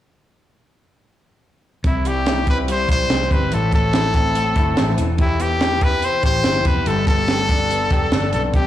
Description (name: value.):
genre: jangly indie pop.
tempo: 143 BPM.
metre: 4/4.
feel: straight.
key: C major.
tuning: A4 = 440 Hz.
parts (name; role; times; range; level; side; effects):
electric guitar through a small old amp; arpeggios; 1.8-8.7 s; A2 to A4; -24 LUFS; left 3 dB; none.
vintage muted fingered electric bass; bass; 1.8-8.7 s; E1 to C2; -22 LUFS; equal; none.
compact cocktail drum kit; drums; 1.8-8.6 s; hi-hat, kick drum, snare drum; -20 LUFS; equal; none.
brilliant trumpet; melody; 1.9-8.7 s; E4 to C5; -21 LUFS; left 1 dB; none.
room: light reverb, small room ambience.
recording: blown-out, overdriven recording, overdrive, studio reverb.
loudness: -16 LUFS.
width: side -12 dB against mid.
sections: 1.8-8.7 A section.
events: none.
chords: 1.8 C; 3.5 Am; 5.0 Em; 6.9 Gadd9.